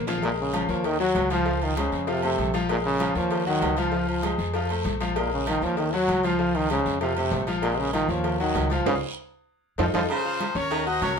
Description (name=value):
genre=latin, salsa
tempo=195 BPM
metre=4/4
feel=straight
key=Bb minor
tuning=A4 = 440 Hz
part: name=bright concert grand piano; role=accompaniment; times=0.0-11.2 s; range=F3 to Gb6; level=-29 LUFS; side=left 4 dB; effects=none
part: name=upright bass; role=bass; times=0.0-11.2 s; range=Bb1 to F2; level=-31 LUFS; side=equal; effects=none
part: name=bongos and cowbell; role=percussion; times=0.1-11.2 s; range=none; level=-35 LUFS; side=left 6 dB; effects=none
part: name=congas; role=percussion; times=0.1-11.2 s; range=none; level=-36 LUFS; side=equal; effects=none
part: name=guiro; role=percussion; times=0.1-11.2 s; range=none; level=-40 LUFS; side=right 5 dB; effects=none
part: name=timbales and agogo bells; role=percussion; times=0.1-11.2 s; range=none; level=-32 LUFS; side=right 1 dB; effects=none
part: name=bright trombone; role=melody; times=0.2-10.0 s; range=Bb2 to Gb3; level=-26 LUFS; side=right 1 dB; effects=none
part: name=bright trumpet section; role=melody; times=10.0-11.2 s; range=F4 to Eb5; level=-28 LUFS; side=left 2 dB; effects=none
part: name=bright baritone saxophone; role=second line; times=10.1-11.2 s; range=Db3 to Gb3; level=-30 LUFS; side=right 5 dB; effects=none
room=moderate studio reverb, RT60 0.5 s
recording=band playing live in one room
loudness=-22 LUFS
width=side -6 dB against mid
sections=0.2-10.1 A section; 10.1-11.2 B section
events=drum fill 0.0; band accent 8.9-10.1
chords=0.2 Bbm7; 0.8 Ebm7; 1.5 Dbmaj7; 2.1 F; 2.7 Bbm7; 3.3 Ebm7; 3.9 Dbmaj7; 4.5 F; 5.2 Bbm7; 5.8 Ebm7; 6.4 Dbmaj7; 7.0 F; 7.6 Bbm7; 8.2 Ebm7; 8.9 Db; 9.5 F7; 10.1 Bbm9